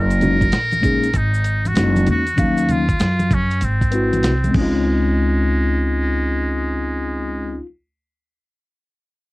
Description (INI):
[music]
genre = hip hop, jazz-hop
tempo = 97 BPM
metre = 4/4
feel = swing 65% on 16ths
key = Db major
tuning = A4 = 439 Hz
[part]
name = trumpet with metal mute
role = melody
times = 0.0-7.6 s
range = Ab3 to Bb4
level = -23 LUFS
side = right 1 dB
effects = cassette tape
[part]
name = upright bass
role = bass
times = 0.0-7.6 s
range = Gb1 to Gb2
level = -20 LUFS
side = equal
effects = none
[part]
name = dusty soul sampler-style drum kit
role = drums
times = 0.1-4.7 s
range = crash cymbal, hi-hat, kick drum, snare drum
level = -21 LUFS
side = equal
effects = none
[part]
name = maracas and congas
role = percussion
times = 0.1-5.1 s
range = none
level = -27 LUFS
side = right 1 dB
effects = none
[part]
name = mellow tine electric piano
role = accompaniment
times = 0.2-7.7 s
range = F3 to F5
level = -20 LUFS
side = left 2 dB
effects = medium stereo tremolo, cassette tape
[sound]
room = light reverb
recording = home recording on cassette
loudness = -16 LUFS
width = side -20 dB against mid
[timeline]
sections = 0.0-4.9 A section; 4.9-7.3 B section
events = none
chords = 0.0 Gb6; 2.4 Ebm9; 3.6 Ab7alt; 4.5 Dbmaj9